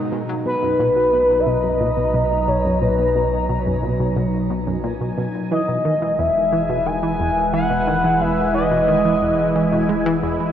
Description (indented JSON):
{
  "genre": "ambient, sequencer-driven space music",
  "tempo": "89 BPM",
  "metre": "4/4",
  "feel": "straight",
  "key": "B major",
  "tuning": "A4 = 440 Hz",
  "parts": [
    { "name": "phased analog pad", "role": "sustained chords", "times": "0.0-10.5 s", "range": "B2 to A#5", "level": "-22 LUFS", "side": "right 1 dB", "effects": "phaser, chorus, shimmer reverb" },
    { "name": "round analog bass", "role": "bass", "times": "0.0-10.5 s", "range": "E1 to B1", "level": "-29 LUFS", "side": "equal", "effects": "none" },
    { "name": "tight sequenced synth", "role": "riff", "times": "0.1-10.4 s", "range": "E2 to G#3", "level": "-24 LUFS", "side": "equal", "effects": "chorus, shimmer reverb, ping-pong delay" },
    { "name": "bubbling stepped-filter texture", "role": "texture", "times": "0.9-10.5 s", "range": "G#5", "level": "-37 LUFS", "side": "right 2 dB", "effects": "chorus, built-in reverb, shimmer reverb" },
    { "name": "expressive synth lead", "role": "melody", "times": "0.5-9.9 s", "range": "B4 to G#5", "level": "-20 LUFS", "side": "left 1 dB", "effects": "lush chorus, cassette tape, shimmer reverb, ping-pong delay" }
  ],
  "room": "wet huge ambient reverb, RT60 7.4 s",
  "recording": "worn, warbling old tape, cassette tape, warbly pitch drift",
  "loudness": "-16 LUFS",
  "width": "side -10 dB against mid",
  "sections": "0.1-10.5 A section",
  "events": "fade-in on synth texture 0.1-10.5",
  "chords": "0.1 Bmaj7; 5.5 Emaj7"
}